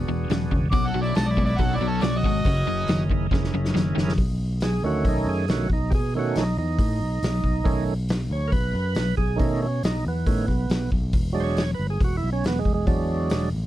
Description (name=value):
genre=blues rock power trio and southern rock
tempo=138 BPM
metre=4/4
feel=straight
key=B mixolydian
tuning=A4 = 439 Hz
part: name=overdriven tonewheel organ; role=sustained chords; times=0.0-13.5 s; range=D#3 to C#5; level=-28 LUFS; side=right 5 dB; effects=slow rotary speaker
part: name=overdriven electric guitar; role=riff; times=0.0-4.2 s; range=E2 to G#3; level=-26 LUFS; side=left 1 dB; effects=none
part: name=fingered electric bass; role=bass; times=0.0-13.7 s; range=E1 to B2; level=-26 LUFS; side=equal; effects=none
part: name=vintage drum kit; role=drums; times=0.3-13.4 s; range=hi-hat, kick drum, snare drum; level=-25 LUFS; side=equal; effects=none
part: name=clear harmonica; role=melody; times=0.7-3.0 s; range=A4 to D6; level=-30 LUFS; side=equal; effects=overdrive, tape echo
part: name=smooth overdriven lead guitar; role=second line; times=0.7-3.0 s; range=C#4 to F#5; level=-35 LUFS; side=right 6 dB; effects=none
room=little or no reverb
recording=none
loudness=-21 LUFS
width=side -14 dB against mid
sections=0.0-4.2 A section; 4.2-13.7 B section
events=drum fill 3.3-4.2; tonewheel organ solo 4.2-13.7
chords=0.0 E7; 0.7 B7; 2.4 F#7; 4.2 B7; 11.1 E7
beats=0.29 | 0.72 1.15 1.58 2.02 | 2.45 2.88 3.31 3.75 | 4.18 4.61 5.05 5.48 | 5.92 6.35 6.78 7.22 | 7.65 8.09 8.52 8.96 | 9.39 9.83 10.26 10.70 | 11.13 11.57 12.00 12.44 | 12.87 13.31